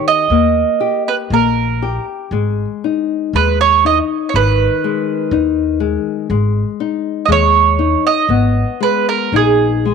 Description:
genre	fado-style ballad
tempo	60 BPM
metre	2/4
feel	rubato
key	G# harmonic minor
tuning	A4 = 440 Hz
part	mandolin	melody	0.0-9.9 s	G#4 to D#5	-14 LUFS	right 10 dB	none
part	nylon-string guitar	accompaniment	0.0-9.9 s	D#3 to G4	-18 LUFS	left 12 dB	none
part	upright bass	bass	0.3-9.9 s	G#1 to D#2	-17 LUFS	equal	none
room	light reverb, small room ambience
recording	1960s-style stereo with parts hard left and right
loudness	-13 LUFS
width	side -6 dB against mid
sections	0.0-9.9 A section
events	none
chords	0.0 D#; 2.3 G#m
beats	| 0.29 1.30 | 2.32 3.34 | 4.34 5.32 | 6.30 7.30 | 8.30 9.33

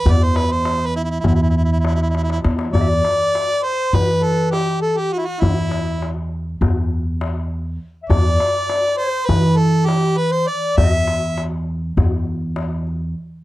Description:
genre	Turkish makam ensemble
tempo	201 BPM (eighths)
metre	9/8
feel	straight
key	E makam ussak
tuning	A4 = 437 Hz
part	clear harmonica	melody	0.0-11.4 s	E4 to E5	-21 LUFS	right 3 dB	none
part	upright bass	bass	0.1-13.1 s	E2 to E3	-18 LUFS	equal	none
part	darbuka	percussion	0.1-12.9 s	none	-22 LUFS	left 2 dB	none
part	dark clarinet	second line	2.7-11.4 s	D4 to E5	-22 LUFS	left 5 dB	none
room	little or no reverb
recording	dry, close 1970s-style studio recording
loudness	-16 LUFS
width	side -16 dB against mid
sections	0.0-2.7 A section; 2.7-13.4 B section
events	drum fill 2.1-2.7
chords	none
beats	| 0.06 0.36 0.66 0.95 1.25 1.55 1.85 2.15 2.44 | 2.74 3.04 3.34 3.63 3.93 4.23 4.53 4.83 5.12 | 5.42 5.72 6.02 6.32 6.62 6.91 7.21 7.51 7.81 | 8.10 8.40 8.70 9.00 9.29 9.59 9.89 10.19 10.49 | 10.78 11.08 11.38 11.68 11.97 12.27 12.57 12.87

